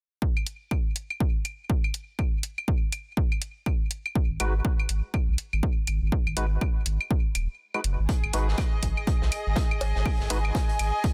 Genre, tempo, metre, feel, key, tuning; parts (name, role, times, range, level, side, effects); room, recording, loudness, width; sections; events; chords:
minimal techno; 122 BPM; 4/4; swing 60% on 16ths; G# minor; A4 = 442 Hz
electronic kick drum; drums; 0.2-11.1 s; -28 LUFS; equal
claves and cowbell; percussion; 0.4-10.9 s; -36 LUFS; equal; overdrive, digital delay
electronic hi-hat; drums; 0.5-10.9 s; -33 LUFS; equal
saturated sub bass; bass; 4.3-10.9 s; D#1 to B1; -28 LUFS; equal; sidechain pumping
percussive organ stab; stabs; 4.4-10.4 s; G#3 to B4; -36 LUFS; equal; ensemble chorus, digital delay
crunchy breakbeat drum kit; drums; 8.1-11.1 s; hi-hat, snare drum; -42 LUFS; equal; sidechain pumping on hats, high-pass filter on hats, high-pass filter on snare, high-pass filter on room
clear studio string section; texture; 8.1-11.1 s; G#4 to G#5; -35 LUFS; equal; sidechain pumping
little or no reverb; dense, heavily limited modern master; -27 LUFS; mono
0.2-8.1 A section; 8.1-11.1 B section
kick drops out 7.6-8.1
0.2 G#m7